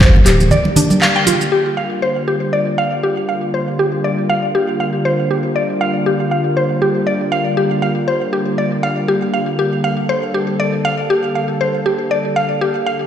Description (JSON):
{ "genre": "afro house", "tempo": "119 BPM", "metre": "4/4", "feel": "swing 55% on 16ths", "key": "G minor", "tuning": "A4 = 439 Hz", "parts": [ { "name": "warm analog pad", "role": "sustained chords", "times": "0.0-13.1 s", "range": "D3 to A4", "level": "-19 LUFS", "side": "equal", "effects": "chorus, vintage 12-bit sampler grit, sidechain pumping" }, { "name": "mallet-like synth pluck", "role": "arpeggios", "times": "0.0-12.9 s", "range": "D4 to G5", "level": "-17 LUFS", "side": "equal", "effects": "chorus, vintage 12-bit sampler grit, sidechain pumping, digital delay" }, { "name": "round analog bass", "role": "bass", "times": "0.0-0.5 s", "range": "D1 to G1", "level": "-12 LUFS", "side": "equal", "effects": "sidechain pumping" }, { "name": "afro-pop drum kit", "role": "drums", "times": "0.0-1.5 s", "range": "handclaps, hi-hat, shaker, toms", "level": "-18 LUFS", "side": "equal", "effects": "low-pass filter on perc, low-pass filter on toms, low-pass filter on hats, low-pass filter on snare" }, { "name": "congas", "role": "percussion", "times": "0.0-1.4 s", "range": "none", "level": "-17 LUFS", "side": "right 2 dB", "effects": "none" } ], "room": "moderate lush hall reverb, RT60 2.6 s", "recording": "played on a big sound system in a bare room, large studio reverb", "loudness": "-14 LUFS", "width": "side -9 dB against mid", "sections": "0.0-1.5 A section; 1.5-13.1 B section", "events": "break 0.5-1.5; band accent 1.0", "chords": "0.0 Gm7" }